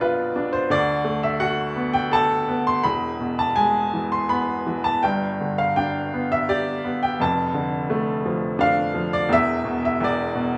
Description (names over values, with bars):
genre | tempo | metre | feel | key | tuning
classical, lyrical solo piano | 84 BPM | 3/4 | rubato | unclear | A4 = 440 Hz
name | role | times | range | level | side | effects
bright upright piano | solo | 0.0-10.6 s | E1 to C6 | -22 LUFS | equal | none
room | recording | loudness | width
moderate recital hall reverb, RT60 1.8 s | small room ambience | -22 LUFS | mono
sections
0.0-10.6 A section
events
none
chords
0.0 Bdim; 0.7 D6; 2.8 E; 5.0 G; 7.2 Dm/F; 9.3 E5; 10.0 E7(no3)